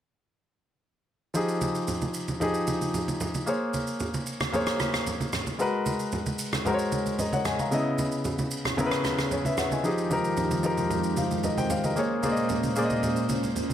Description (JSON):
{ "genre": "amapiano", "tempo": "113 BPM", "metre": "4/4", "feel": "straight", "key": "F minor", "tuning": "A4 = 439 Hz", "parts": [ { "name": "warm grand piano", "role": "accompaniment", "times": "1.3-13.7 s", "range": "Db3 to Bb5", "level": "-27 LUFS", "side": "left 1 dB", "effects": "none" }, { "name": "shaker and rim click", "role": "drums", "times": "1.3-13.7 s", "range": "none", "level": "-34 LUFS", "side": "right 1 dB", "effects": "none" }, { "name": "congas", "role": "percussion", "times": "1.6-13.7 s", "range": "none", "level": "-33 LUFS", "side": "right 3 dB", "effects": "none" }, { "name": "string machine, violas", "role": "sustained chords", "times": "9.8-13.7 s", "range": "F2 to C5", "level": "-30 LUFS", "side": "right 2 dB", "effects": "ensemble chorus" } ], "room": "light reverb, small room ambience", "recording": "none", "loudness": "-25 LUFS", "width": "side -10 dB against mid", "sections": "1.3-9.8 A section; 9.8-13.7 B section", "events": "none", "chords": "1.3 Fm9; 3.5 Bbm9; 5.6 Abm9; 7.7 Dbm9; 9.8 Fm9; 12.0 Bbm9", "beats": "| 1.35 1.88 2.41 2.94 | 3.47 4.00 4.53 5.07 | 5.60 6.13 6.66 7.19 | 7.72 8.25 8.78 9.31 | 9.84 10.37 10.90 11.44 | 11.97 12.50 13.03 13.56" }